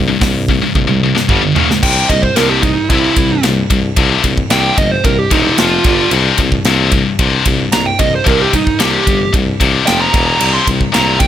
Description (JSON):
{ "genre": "heavy metal", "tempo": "112 BPM", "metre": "4/4", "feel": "straight", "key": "unclear", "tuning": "A4 = 440 Hz", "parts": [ { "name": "distorted electric guitar", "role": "riff", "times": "0.0-1.8 s", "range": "C2 to G3", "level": "-19 LUFS", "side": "right 13 dB", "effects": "distortion" }, { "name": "heavy high-gain guitar", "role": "riff", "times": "0.0-11.3 s", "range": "C2 to G3", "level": "-14 LUFS", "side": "left 7 dB", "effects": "distortion" }, { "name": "mellow tuba", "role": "bass", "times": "0.0-11.3 s", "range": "E1 to C2", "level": "-18 LUFS", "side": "equal", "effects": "none" }, { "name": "modern studio drum kit", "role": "drums", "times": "0.2-11.3 s", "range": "crash cymbal, hi-hat, kick drum, ride cymbal, snare drum, toms", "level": "-16 LUFS", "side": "right 1 dB", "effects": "none" }, { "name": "dark smooth lead guitar", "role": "melody", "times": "1.8-11.3 s", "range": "Eb4 to C6", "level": "-16 LUFS", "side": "right 5 dB", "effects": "overdrive" } ], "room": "little or no reverb", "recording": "none", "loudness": "-10 LUFS", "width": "side -10 dB against mid", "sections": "0.0-1.8 A section; 1.8-11.3 B section", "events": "drum fill 0.7-1.8; lead electric guitar solo 1.8-11.3", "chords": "0.0 C5; 1.3 G5; 1.6 Db5; 1.8 C5; 5.6 F5; 5.9 G5; 6.1 C5; 9.9 F5; 10.1 E5; 10.4 C5" }